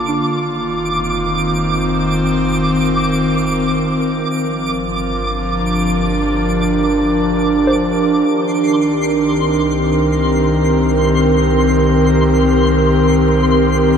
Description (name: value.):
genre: ambient.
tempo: free time.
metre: none.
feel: none.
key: unclear.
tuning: A4 = 441 Hz.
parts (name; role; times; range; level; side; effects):
airy breathy pad; sustained chords; 0.0-14.0 s; D3 to A5; -14 LUFS; equal; chorus, shimmer reverb.
soft round pluck; arpeggios; 0.0-9.4 s; C4 to C5; -26 LUFS; right 2 dB; chorus, tape echo, shimmer reverb.
warm sub bass; bass; 0.0-14.0 s; F1 to C2; -22 LUFS; equal; none.
twinkling granular texture; texture; 0.0-14.0 s; C6 to D6; -22 LUFS; equal; built-in reverb, shimmer reverb.
room: wet concert hall reverb, RT60 2.3 s.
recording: none.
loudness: -13 LUFS.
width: side -7 dB against mid.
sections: 0.0-8.3 A section; 8.3-14.0 B section.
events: none.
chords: 0.3 F7sus4; 4.3 Gm7; 8.3 Cm7.